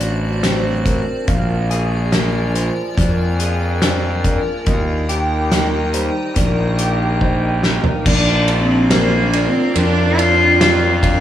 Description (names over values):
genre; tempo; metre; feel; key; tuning
post-rock; 71 BPM; 4/4; straight; Bb major; A4 = 437 Hz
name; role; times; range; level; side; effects
icy glass pad; sustained chords; 0.0-11.2 s; Eb4 to D6; -27 LUFS; right 1 dB; chorus, built-in reverb
electric guitar through a small old amp; arpeggios; 0.0-11.2 s; Bb2 to Ab4; -24 LUFS; left 1 dB; analog chorus, digital delay
felt-muted upright piano; arpeggios; 0.0-11.2 s; Bb4 to F5; -27 LUFS; right 2 dB; slapback echo, digital delay
fuzz fingered electric bass; bass; 0.0-11.2 s; A1 to F2; -18 LUFS; equal; overdrive
loose indie drum kit; drums; 0.0-11.2 s; crash cymbal, hi-hat, kick drum, ride cymbal, snare drum, toms; -19 LUFS; equal; none
warm cello; melody; 8.1-11.0 s; Bb3 to F4; -15 LUFS; equal; digital delay
room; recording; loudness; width
moderate scoring stage reverb, RT60 2.0 s, small room ambience; big arena sound; -14 LUFS; side -11 dB against mid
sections
0.0-8.1 A section; 8.1-11.2 B section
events
drum fill 7.2-8.1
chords
0.0 D7; 1.3 Bb7; 4.7 Eb; 8.1 Bb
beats
0.44 | 1.28 2.13 2.98 3.83 | 4.67 5.52 6.37 7.22 | 8.06 8.91 9.76 10.61